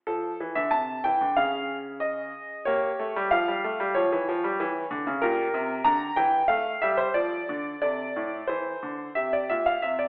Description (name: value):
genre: classical-period piano sonatina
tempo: 92 BPM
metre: 4/4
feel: straight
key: F major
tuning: A4 = 439 Hz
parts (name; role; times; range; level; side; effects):
- bright baby grand piano; solo; 0.1-10.1 s; A2 to Bb5; -24 LUFS; equal; none
room: wet recital hall reverb, RT60 1.3 s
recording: telephone sound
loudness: -24 LUFS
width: side -29 dB against mid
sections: 0.1-10.1 A section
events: none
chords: 0.1 F5; 1.4 Db; 2.7 G7(b5, no3); 5.2 C7/Bb; 6.5 F; 7.8 Amadd11; 9.2 C5